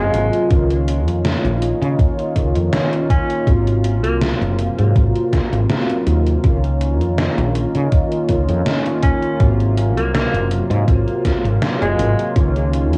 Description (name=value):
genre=vaporwave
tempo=81 BPM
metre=4/4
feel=swing 54% on 16ths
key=Db major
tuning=A4 = 440 Hz
part: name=breathy alto saxophone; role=melody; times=0.0-4.2, 9.0-12.4 s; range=Ab3 to Db4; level=-27 LUFS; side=equal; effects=tape echo
part: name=mellow synth brass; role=accompaniment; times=0.0-13.0 s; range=C3 to F4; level=-23 LUFS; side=equal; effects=lush chorus, tape echo
part: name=warbly tape-like pad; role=sustained chords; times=0.1-13.0 s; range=Gb3 to Bb5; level=-31 LUFS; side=equal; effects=chorus, built-in reverb, tremolo
part: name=woody fretless electric bass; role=bass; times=0.0-13.0 s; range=Gb1 to Db3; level=-20 LUFS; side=equal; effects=tube saturation
part: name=gated 80s digital drum machine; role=drums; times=0.1-13.0 s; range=hi-hat, snare drum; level=-26 LUFS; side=equal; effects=gated reverb, gated reverb snare, overdrive
part: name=electronic kick drum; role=drums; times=0.5-12.5 s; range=none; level=-18 LUFS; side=equal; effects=overdrive
room=light reverb, digital ambience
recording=worn, warbling old tape, cassette tape, warbly pitch drift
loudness=-17 LUFS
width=mono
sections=0.0-13.0 A section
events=none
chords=0.0 Ab13; 0.5 Db69; 3.5 Ab13; 6.4 Db69; 9.4 Ab13; 12.4 Db69